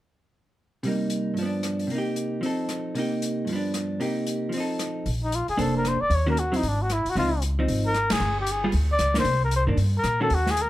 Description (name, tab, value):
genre	jazz, small-group swing and bop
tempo	229 BPM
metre	4/4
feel	swing 61% on 8ths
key	unclear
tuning	A4 = 439 Hz
part	vintage hollow-body jazz guitar	accompaniment	0.8-10.3 s	G2 to C5	-26 LUFS	right 1 dB	none
part	open jazz drum kit	drums	0.8-10.6 s	hi-hat, ride cymbal, rim click, snare drum	-34 LUFS	left 1 dB	none
part	upright bass	bass	5.1-10.7 s	F1 to Bb2	-25 LUFS	equal	none
part	warm flugelhorn	melody	5.2-10.7 s	D4 to D5	-25 LUFS	left 1 dB	none
room	light reverb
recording	none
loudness	-22 LUFS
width	side -15 dB against mid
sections	0.8-5.1 A section; 5.1-10.7 B section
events	band accent 8.1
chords	0.8 Cm7; 1.4 G7; 1.9 Cm7; 2.4 F7; 3.0 Cm7; 3.5 G7; 4.0 Cm7; 4.5 F7; 5.1 Bbmaj9; 6.1 Ebm7; 6.6 E9/G#; 7.2 Dbmaj9; 8.2 G5; 9.3 Cm7